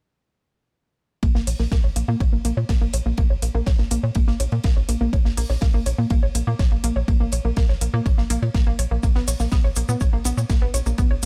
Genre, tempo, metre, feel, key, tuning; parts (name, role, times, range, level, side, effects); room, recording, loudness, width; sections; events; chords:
melodic techno; 123 BPM; 4/4; straight; Bb phrygian; A4 = 440 Hz
analog pluck; arpeggios; 1.2-11.3 s; Bb3 to Db5; -30 LUFS; equal; chorus, sidechain pumping, analog delay
tight sequencer bass; bass; 1.2-11.3 s; Bb1 to Bb2; -25 LUFS; equal; transformer saturation, sidechain pumping
crisp fusion drum kit; drums; 1.2-11.3 s; hi-hat, ride cymbal, snare drum; -42 LUFS; equal; high-pass filter on cymbals, high-pass filter on hats, high-pass filter on snare, high-pass filter on room
electronic kick drum; drums; 1.2-11.1 s; -22 LUFS; equal
electronic hi-hat; drums; 1.5-11.3 s; -32 LUFS; equal; sidechain pumping on hats
cabasa; percussion; 9.0-11.3 s; -34 LUFS; equal
small room ambience; dry, gritty hardware recording; -21 LUFS; mono
1.2-11.3 A section
filter sweep on synth arpeggio sound 1.2-11.3
1.2 Bbm